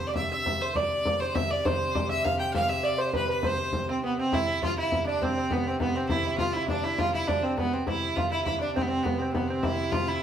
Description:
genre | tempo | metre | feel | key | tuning
medieval dance | 135 BPM (dotted quarters) | 6/8 | straight | C major | A4 = 440 Hz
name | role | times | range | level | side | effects
bright fiddle | melody | 0.0-10.2 s | B3 to G5 | -28 LUFS | right 1 dB | none
lute | second line | 0.0-10.2 s | B3 to G5 | -31 LUFS | right 3 dB | none
clear viola da gamba | drone | 0.0-10.2 s | C3 | -36 LUFS | left 1 dB | none
frame drum | percussion | 0.0-10.1 s | none | -31 LUFS | left 2 dB | none
room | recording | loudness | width
wet stone room reverb, RT60 1.1 s | band playing live in one room | -25 LUFS | side -9 dB against mid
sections
0.0-4.3 A section; 4.3-10.2 B section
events
none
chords
none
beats
0.31 | 0.76 1.21 | 1.65 2.10 | 2.55 2.99 | 3.44 3.88 | 4.33 4.77 | 5.22 5.66 | 6.11 6.55 | 6.99 7.44 | 7.88 8.32 | 8.76 9.20 | 9.65 10.09

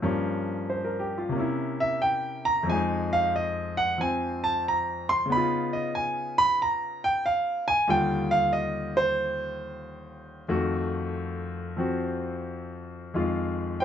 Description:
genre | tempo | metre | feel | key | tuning
solo jazz | 92 BPM | 4/4 | swing 68% on 8ths, rubato | unclear | A4 = 440 Hz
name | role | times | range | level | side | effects
clear concert grand piano | solo | 0.0-13.8 s | Eb2 to C6 | -25 LUFS | equal | none
room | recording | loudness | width
wet studio ambience, RT60 0.5 s | band playing live in one room, nothing above 7.9 kHz | -24 LUFS | side -9 dB against mid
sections
0.0-13.1 A section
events
grand piano solo 0.0-13.1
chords
0.0 Gm7b5; 1.3 C7b9; 2.7 Fm7; 5.3 Db9; 7.9 Ebmaj9; 10.5 F7b9; 13.1 Fm7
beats
| 0.03 0.68 1.34 2.00 | 2.67 3.33 3.99 4.64 | 5.30 5.95 6.59 7.24 | 7.88 8.52 9.17 9.81 | 10.47 11.12 11.79 12.47 | 13.15 13.81

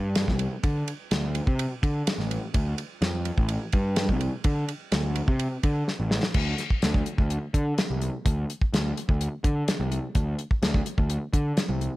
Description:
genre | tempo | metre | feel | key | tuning
psychedelic rock | 126 BPM | 4/4 | straight | D minor | A4 = 440 Hz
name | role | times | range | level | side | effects
fuzz picked electric bass | bass | 0.0-11.9 s | A1 to D3 | -27 LUFS | equal | overdrive
damped 70s drum kit | drums | 0.2-11.9 s | crash cymbal, hi-hat, kick drum, ride cymbal, snare drum | -26 LUFS | equal | none
room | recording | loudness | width
light reverb | none | -24 LUFS | side -18 dB against mid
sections
0.0-6.4 A section; 6.4-12.0 B section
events
drum fill 5.9-6.4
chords
none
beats
0.16 | 0.64 1.12 1.59 2.07 | 2.55 3.02 3.50 3.98 | 4.45 4.93 5.40 5.88 | 6.35 6.83 7.30 7.78 | 8.25 8.72 9.20 9.67 | 10.15 10.62 11.10 11.57

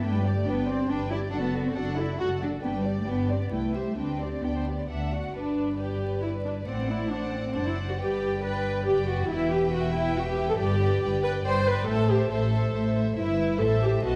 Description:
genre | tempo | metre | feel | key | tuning
quick classical-period movement for string orchestra | 138 BPM | 3/4 | rubato | G major | A4 = 440 Hz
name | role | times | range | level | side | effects
dark studio violin section | melody | 0.0-14.2 s | D5 to A5 | -40 LUFS | equal | none
rich studio violin section | second line | 0.0-14.2 s | F#4 to F#5 | -38 LUFS | equal | none
rich studio viola section | accompaniment | 0.0-14.2 s | C4 to C5 | -31 LUFS | equal | none
dark studio double bass section | bass | 0.0-14.2 s | E1 to D2 | -33 LUFS | equal | none
warm studio cello section | bass | 0.0-14.2 s | E2 to F#4 | -33 LUFS | equal | none
room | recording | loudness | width
wet recital hall reverb, RT60 1.6 s | dark, warm production, vinyl crackle | -27 LUFS | mono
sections
0.0-5.4 A section; 5.4-14.2 B section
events
none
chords
0.0 G; 1.3 D/F#; 2.6 G; 3.5 Cmaj7; 4.0 G/D; 4.9 D; 5.4 G; 6.7 D7/A; 8.0 G; 9.3 Em; 10.6 G; 11.9 Am; 13.2 Em/G; 13.6 Am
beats
| 0.03 0.47 0.90 | 1.33 1.76 2.20 | 2.63 3.08 3.52 | 3.98 4.44 4.90 | 5.35 5.79 6.23 | 6.67 7.11 7.55 | 7.99 8.43 8.87 | 9.30 9.73 10.16 | 10.59 11.03 11.45 | 11.88 12.32 12.75 | 13.18 13.61 14.05

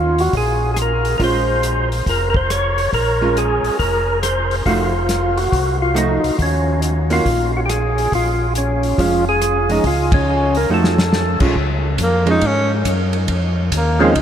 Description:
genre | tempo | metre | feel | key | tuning
soul jazz organ trio | 139 BPM | 4/4 | swing 65% on 8ths | Bb minor | A4 = 441 Hz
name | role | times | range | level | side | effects
percussive tonewheel organ | melody | 0.0-11.4, 14.0-14.1 s | Ab3 to Db5 | -18 LUFS | equal | slow rotary speaker, overdrive
mellow tonewheel organ | bass | 0.0-14.2 s | F1 to Ab2 | -20 LUFS | equal | chorus vibrato, slow rotary speaker
warm soul drum kit | drums | 0.2-14.2 s | crash cymbal, hi-hat, kick drum, ride cymbal, rim click, snare drum | -23 LUFS | equal | none
archtop guitar, miked and amplified | accompaniment | 1.2-14.1 s | Eb3 to Gb4 | -24 LUFS | right 3 dB | none
breathy tenor saxophone | melody | 12.0-14.2 s | Bb3 to Eb4 | -19 LUFS | equal | none
room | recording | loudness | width
wet huge ambient reverb, RT60 8.6 s | in a vast, echoing space | -15 LUFS | side -9 dB against mid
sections
0.0-11.6 A section; 11.6-14.2 B section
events
band accent 10.1; drum fill 10.7-11.1; tenor saxophone solo 11.6-14.2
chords
0.0 Ebm; 1.2 Bbm7; 4.7 F7b9; 6.4 Eb7(no3); 8.1 Bbm7; 10.7 F7b9; 11.6 Bbm7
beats
0.34 0.77 | 1.20 1.63 2.07 2.50 | 2.93 3.36 3.79 4.23 | 4.66 5.09 5.52 5.96 | 6.39 6.82 7.25 7.68 | 8.12 8.55 8.98 9.41 | 9.84 10.28 10.71 11.14 | 11.57 12.00 12.43 12.86 | 13.29 13.73 14.16

